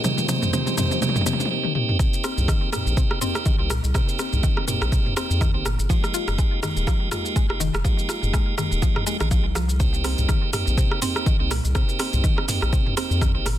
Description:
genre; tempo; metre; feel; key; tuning
afro house; 123 BPM; 4/4; swing 56% on 16ths; unclear; A4 = 440 Hz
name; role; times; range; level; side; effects
dark analog pad; sustained chords; 0.0-1.5 s; Ab3 to Eb5; -34 LUFS; left 2 dB; chorus, sidechain pumping
mallet-like synth pluck; arpeggios; 0.0-13.6 s; G2 to F4; -29 LUFS; left 1 dB; chorus, sidechain pumping, dub echo
tonewheel organ; stabs; 0.0-13.5 s; Ab3 to Ab4; -27 LUFS; right 4 dB; overdrive, stopped rotary speaker, sidechain pumping, dub echo
deep house drum kit; drums; 0.0-13.6 s; hi-hat, rim click, shaker, toms; -27 LUFS; equal; none
congas; percussion; 0.0-1.5 s; none; -30 LUFS; right 3 dB; none
electronic kick drum; drums; 2.0-13.3 s; none; -21 LUFS; equal; none
round analog bass; bass; 2.4-13.6 s; Eb1 to F2; -23 LUFS; equal; sidechain pumping
room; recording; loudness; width
digital ambience; dense, heavily limited modern master; -20 LUFS; side -12 dB against mid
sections
0.0-2.0 A section; 2.0-13.6 B section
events
build-up 0.0-2.0; drum fill 0.0-1.5, 1.6-2.0; drop 2.0-13.6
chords
0.0 Fm11; 2.0 Cm7; 5.9 Fm11; 9.8 Cm7

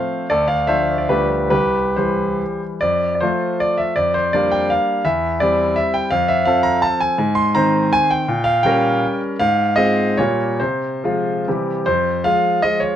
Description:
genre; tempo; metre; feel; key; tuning
classical, romantic triple-time dance for piano with dotted rhythms; 128-179 BPM; 3/4; rubato; F major, F minor from 7.2 s; A4 = 442 Hz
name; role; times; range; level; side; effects
bright concert grand piano; solo; 0.0-13.0 s; C2 to C6; -16 LUFS; equal; none
room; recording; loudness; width
light reverb; worn, warbling old tape, cassette tape, warbly pitch drift; -16 LUFS; side -10 dB against mid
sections
0.0-2.8 A section; 2.8-11.9 B section; 11.9-13.0 C section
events
none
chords
0.3 Dm; 1.1 G7/D; 1.5 C; 2.8 F; 4.0 Gm7/F; 5.0 C/E; 6.1 F; 7.2 Ab; 8.3 Gdim/Bb; 9.4 Fm/Ab; 10.2 Gm7b5/Bb; 10.6 Fm/C; 11.5 C; 11.9 Fm

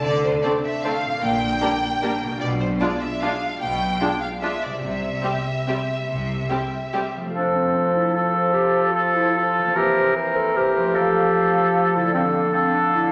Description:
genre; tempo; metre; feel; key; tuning
classical, orchestral ballroom waltz; 136-163 BPM; 3/4; rubato; F major; A4 = 440 Hz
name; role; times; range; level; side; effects
rich studio violin section; melody; 0.0-7.1 s; C5 to G5; -28 LUFS; equal; none
concert harp; arpeggios; 0.0-13.1 s; Bb2 to Bb4; -29 LUFS; equal; none
clear studio cello section; bass; 0.0-6.4 s; Bb2 to D3; -33 LUFS; equal; none
rich studio double bass section; bass; 0.0-6.4 s; Bb1 to D2; -34 LUFS; equal; none
warm chamber violin section; second line; 0.4-7.0 s; D4 to Bb4; -31 LUFS; equal; none
rich studio viola section; accompaniment; 0.4-7.0 s; G3 to D4; -32 LUFS; equal; none
warm oboe; second line; 7.3-13.1 s; A4 to Bb4; -23 LUFS; equal; none
warm bassoon; accompaniment; 7.3-13.1 s; D3 to F3; -29 LUFS; equal; none
mellow flute section; second line; 7.4-13.1 s; C5 to F5; -28 LUFS; equal; none
warm clarinet; second line; 7.4-13.1 s; Bb3 to C5; -26 LUFS; equal; none
room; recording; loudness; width
wet recital hall reverb, RT60 1.5 s; none; -21 LUFS; mono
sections
0.0-7.3 A section; 7.3-13.1 A section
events
none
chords
0.0 Dm7; 1.2 Gm/Bb; 2.4 Bdim7; 4.8 C; 7.3 F; 9.8 C7/E; 10.9 F

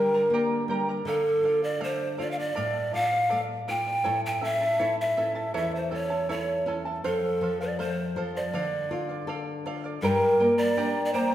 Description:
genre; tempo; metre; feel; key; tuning
andean folk, Andean ensemble; 80 BPM; 2/4; straight; D minor; A4 = 445 Hz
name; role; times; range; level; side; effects
breathy mellow large pan pipes; melody; 0.0-11.3 s; A4 to G5; -26 LUFS; equal; none
charango; accompaniment; 0.0-11.3 s; E4 to Bb5; -32 LUFS; right 2 dB; none
nylon-string guitar; accompaniment; 0.0-11.3 s; E2 to A4; -32 LUFS; left 2 dB; none
room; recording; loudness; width
wet recital hall reverb, RT60 1.4 s; recorded in a church or concert hall; -24 LUFS; side -12 dB against mid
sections
0.0-10.0 A section; 10.0-11.3 A section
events
none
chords
0.0 Gm; 1.1 Dm; 4.0 A; 7.0 F; 8.5 Dm; 10.0 Gm

